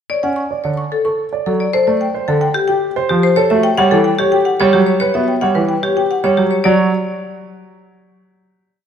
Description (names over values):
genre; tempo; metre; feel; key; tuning
classical, minimalist pattern music; 110 BPM; 3/4; straight; D major; A4 = 440 Hz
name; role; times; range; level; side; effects
marimba with medium hard mallets; melody; 0.1-6.9 s; G4 to C#6; -16 LUFS; left 5 dB; none
dark baby grand piano; arpeggios; 0.1-6.9 s; F#4 to D5; -20 LUFS; right 7 dB; none
clear grand piano; accompaniment; 0.2-6.9 s; D3 to C#4; -17 LUFS; right 3 dB; none
room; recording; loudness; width
moderate scoring stage reverb, RT60 1.9 s; none; -13 LUFS; side -8 dB against mid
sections
0.1-6.6 A section; 6.6-8.3 final chord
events
none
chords
0.1 D; 1.7 Fadd9; 3.4 A7; 5.0 Emadd9; 6.6 N.C.